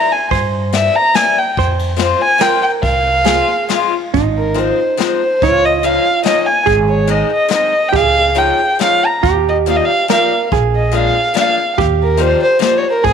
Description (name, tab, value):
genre	musette waltz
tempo	142 BPM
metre	3/4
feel	swing 53% on 8ths, rubato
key	F minor, Ab major from 4.1 s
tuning	A4 = 440 Hz
part	dark violin	melody	0.0-13.1 s	Ab4 to Bb5	-14 LUFS	equal	none
part	hollow-body jazz guitar	second line	0.0-13.1 s	Eb4 to E5	-19 LUFS	right 12 dB	none
part	picked acoustic archtop guitar	accompaniment	0.0-12.8 s	Eb3 to F4	-20 LUFS	left 13 dB	none
part	upright bass	bass	0.3-13.1 s	Ab1 to G2	-18 LUFS	equal	none
part	jazz brush drum kit	drums	0.3-13.1 s	hi-hat, kick drum, ride cymbal, snare drum	-22 LUFS	left 5 dB	none
room	moderate plate reverb, RT60 2.6 s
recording	1960s-style stereo with parts hard left and right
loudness	-11 LUFS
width	side -7 dB against mid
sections	0.0-4.1 A section; 4.1-13.1 B section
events	none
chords	0.0 C; 1.6 Fm; 4.1 Ab6; 5.4 Dbadd9; 6.7 Ab; 7.9 Dbadd9; 9.2 Ebadd9; 10.5 Bb7; 11.8 Ebadd9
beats	| 0.31 0.73 1.15 | 1.57 1.99 2.40 | 2.82 3.25 3.70 | 4.14 4.57 4.99 | 5.41 5.83 6.25 | 6.67 7.08 7.51 | 7.93 8.36 8.79 | 9.23 9.66 10.09 | 10.51 10.94 11.36 | 11.78 12.20 12.62 | 13.04